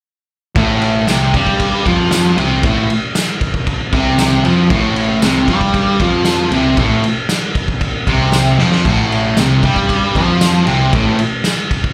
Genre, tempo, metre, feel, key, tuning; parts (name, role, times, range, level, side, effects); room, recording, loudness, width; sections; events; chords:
garage rock duo or trio; 116 BPM; 4/4; straight; A minor; A4 = 441 Hz
fuzz guitar; riff; 0.6-11.2 s; A2 to G3; -16 LUFS; equal; distortion, slapback echo
growling picked electric bass; bass; 0.6-11.2 s; A1 to G2; -21 LUFS; equal; overdrive
raw garage drum kit; drums; 0.6-11.9 s; crash cymbal, kick drum, ride cymbal, snare drum; -19 LUFS; equal
tambourine; percussion; 1.1-11.6 s; -27 LUFS; equal
light reverb; live gig heard through the venue's PA, club reverb; -14 LUFS; mono
0.6-11.9 A section
drum fill 8.6
0.6 Am